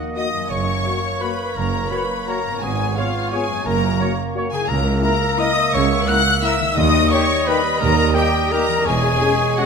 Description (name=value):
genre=classical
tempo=172 BPM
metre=3/4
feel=uneven beats, rubato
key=unclear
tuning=A4 = 440 Hz
part: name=warm oboe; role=second line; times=0.0-9.7 s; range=Db5 to E5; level=-29 LUFS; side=right 2 dB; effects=none
part: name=mellow bassoon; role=accompaniment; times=0.0-9.7 s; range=G3 to Cb4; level=-29 LUFS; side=right 4 dB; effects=none
part: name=concert harp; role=arpeggios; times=0.0-9.7 s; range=Gb2 to A#4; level=-29 LUFS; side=left 12 dB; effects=none
part: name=clear symphonic violin section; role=melody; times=0.2-9.7 s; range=F5 to F#6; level=-26 LUFS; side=left 4 dB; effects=none
part: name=bright symphonic violin section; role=second line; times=0.2-9.7 s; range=F5 to F#6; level=-28 LUFS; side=left 2 dB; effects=none
part: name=concert flute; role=second line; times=0.2-9.7 s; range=F5 to F#6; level=-26 LUFS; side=left 4 dB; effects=none
part: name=warm clarinet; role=second line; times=0.2-9.7 s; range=F4 to F#5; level=-26 LUFS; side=left 1 dB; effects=none
part: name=rich symphonic viola section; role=accompaniment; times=0.2-9.7 s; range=F4 to F#5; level=-27 LUFS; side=equal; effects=none
part: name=mellow French horn section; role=sustained chords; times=0.2-9.7 s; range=G#3 to Gb4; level=-28 LUFS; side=left 6 dB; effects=none
part: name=mellow trumpet section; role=stabs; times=0.2-9.7 s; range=G4 to Eb5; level=-31 LUFS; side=right 1 dB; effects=none
part: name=clear symphonic double bass section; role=bass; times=0.5-9.2 s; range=E1 to D#2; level=-24 LUFS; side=right 4 dB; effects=none
part: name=rich studio cello section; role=bass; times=0.5-9.1 s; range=C#2 to Ab2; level=-26 LUFS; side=right 3 dB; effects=none
part: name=timpani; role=percussion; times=6.8-7.3 s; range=D#3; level=-28 LUFS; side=right 1 dB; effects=none
room=moderate concert hall reverb, RT60 2.3 s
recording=none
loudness=-16 LUFS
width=side -5 dB against mid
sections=0.0-9.7 A section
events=none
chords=0.0 Ebm; 0.5 Gb; 2.6 Db7/Ab; 3.7 Gb; 4.7 A#dim/C#; 6.8 D#; 8.9 C#m/E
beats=0.17 | 0.51 0.85 1.22 | 1.56 1.91 2.27 | 2.62 2.96 3.32 | 3.66 4.00 4.36 | 4.69 5.04 5.40 | 5.74 6.07 6.43 | 6.77 7.11 7.47 | 7.81 8.16 8.52 | 8.87 9.21 9.59